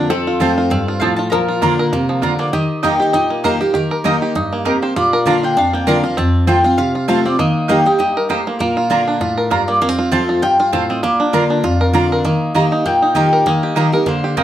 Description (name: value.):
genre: bluegrass.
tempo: 198 BPM.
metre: 4/4.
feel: swing 55% on 8ths.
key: unclear.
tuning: A4 = 443 Hz.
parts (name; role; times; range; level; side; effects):
lap resonator guitar; second line; 0.0-2.4 s; A4 to Bb4; -22 LUFS; left 7 dB; slapback echo.
picked steel-string acoustic guitar; accompaniment; 0.0-14.4 s; F2 to G4; -17 LUFS; equal; none.
bluegrass banjo; arpeggios; 0.0-14.4 s; F3 to Bb4; -19 LUFS; right 1 dB; none.
mandolin; melody; 0.4-14.4 s; Bb4 to Bb5; -19 LUFS; left 1 dB; none.
mandolin; stabs; 0.4-14.4 s; Bb3 to Bb5; -20 LUFS; right 4 dB; none.
room: moderate studio reverb, RT60 0.7 s.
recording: none.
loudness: -13 LUFS.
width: side -12 dB against mid.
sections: 0.0-2.5 A section; 2.5-12.2 B section; 12.2-14.4 B section.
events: none.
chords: 0.1 F; 1.3 Bb; 2.5 Eb; 5.0 Bb; 6.2 F; 7.4 Eb; 8.6 Bb; 9.8 F; 11.0 Bb; 12.2 Eb.